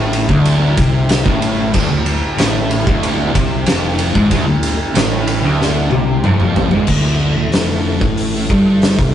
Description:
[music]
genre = stoner and doom metal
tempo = 93 BPM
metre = 4/4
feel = straight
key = D minor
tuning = A4 = 439 Hz
[part]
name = mellow tonewheel organ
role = sustained chords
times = 0.0-9.1 s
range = D3 to E4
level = -26 LUFS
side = left 2 dB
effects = chorus vibrato, slow rotary speaker
[part]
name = crunchy overdriven guitar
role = riff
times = 0.0-6.9 s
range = D2 to C3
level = -20 LUFS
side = left 1 dB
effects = none
[part]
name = thick fuzz guitar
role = riff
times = 0.0-9.1 s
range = D2 to C3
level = -22 LUFS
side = left 6 dB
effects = none
[part]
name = thick fuzz guitar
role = riff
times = 0.0-9.1 s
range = D2 to C3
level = -18 LUFS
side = right 3 dB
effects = distortion
[part]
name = overdriven fingered electric bass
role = bass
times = 0.0-9.1 s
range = D1 to C2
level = -23 LUFS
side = equal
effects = none
[part]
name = oversized low-tuned drum kit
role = drums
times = 0.1-9.1 s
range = crash cymbal, hi-hat, kick drum, ride cymbal, snare drum, toms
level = -16 LUFS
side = equal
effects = none
[sound]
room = moderate stone room reverb, RT60 1.1 s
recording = rough rehearsal-room recording, nothing above 10.4 kHz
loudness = -12 LUFS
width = side -10 dB against mid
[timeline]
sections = 0.0-6.9 A section; 6.9-9.1 B section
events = drum fill 5.6-6.9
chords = 0.0 Dm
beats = 0.45 1.09 | 1.74 2.38 3.03 3.67 | 4.32 4.96 5.60 6.25 | 6.89 7.54 8.18 8.83

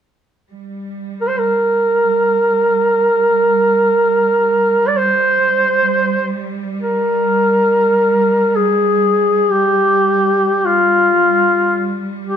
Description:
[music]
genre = caucasian folk, Caucasian lament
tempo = free time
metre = none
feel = none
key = G phrygian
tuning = A4 = 440 Hz
[part]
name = clear studio cello section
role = drone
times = 0.5-12.4 s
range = G3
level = -22 LUFS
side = right 3 dB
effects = none
[part]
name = mellow duduk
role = melody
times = 1.2-12.4 s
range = F4 to D5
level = -12 LUFS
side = equal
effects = none
[sound]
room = moderate scoring stage reverb, RT60 1.5 s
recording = none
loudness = -12 LUFS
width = side -8 dB against mid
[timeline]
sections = 0.5-12.4 A section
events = none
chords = none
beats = free time

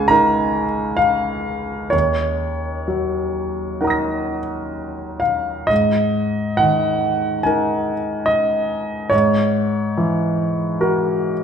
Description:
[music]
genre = classical, impressionist solo piano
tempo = 62-73 BPM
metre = 4/4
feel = rubato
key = unclear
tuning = A4 = 445 Hz
[part]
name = clear grand piano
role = solo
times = 0.0-11.4 s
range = C#2 to A#6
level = -17 LUFS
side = equal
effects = none
[sound]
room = moderate recital hall reverb, RT60 1.7 s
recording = minimal, uncompressed stereo recording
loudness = -17 LUFS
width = side -7 dB against mid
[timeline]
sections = 0.0-11.4 A section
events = none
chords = 0.0 C#69; 1.9 D#m7; 5.7 G#sus2; 9.1 F#9/G#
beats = 0.10 1.00 | 1.93 2.88 3.82 4.75 | 5.70 6.61 7.45 8.28 | 9.13 9.97 10.81

